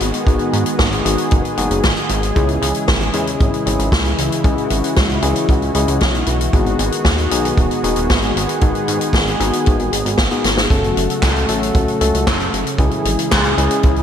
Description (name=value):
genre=italo disco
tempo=115 BPM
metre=4/4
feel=straight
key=C# minor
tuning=A4 = 436 Hz
part: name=warm analog pad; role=sustained chords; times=0.0-14.0 s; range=C#3 to A4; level=-21 LUFS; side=equal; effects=chorus
part: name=chorused synth bass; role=bass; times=0.0-14.0 s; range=D#1 to G#2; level=-21 LUFS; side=equal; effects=none
part: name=swinging big-band drum kit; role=drums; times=0.0-14.0 s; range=handclaps, hi-hat, snare drum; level=-21 LUFS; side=left 1 dB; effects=gated reverb
part: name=tine electric piano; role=stabs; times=0.3-14.0 s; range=G#3 to A4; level=-21 LUFS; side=left 3 dB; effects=vintage 12-bit sampler grit, ping-pong delay
part: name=kick drum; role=drums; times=0.3-13.9 s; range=none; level=-18 LUFS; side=right 1 dB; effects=none
room=moderate lush hall reverb, RT60 1.8 s, small room reverb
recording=bright 1980s-style digital production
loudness=-14 LUFS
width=side -8 dB against mid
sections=0.0-10.7 A section; 10.7-14.0 B section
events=drum fill 10.4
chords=0.0 G#m7; 2.4 C#m; 6.5 G#m7; 10.7 F#m; 12.8 C#m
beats=| 0.27 0.79 1.31 1.84 | 2.36 2.88 3.40 3.92 | 4.45 4.97 5.49 6.01 | 6.53 7.05 7.58 8.10 | 8.62 9.14 9.66 10.18 | 10.71 11.23 11.75 12.27 | 12.79 13.31 13.84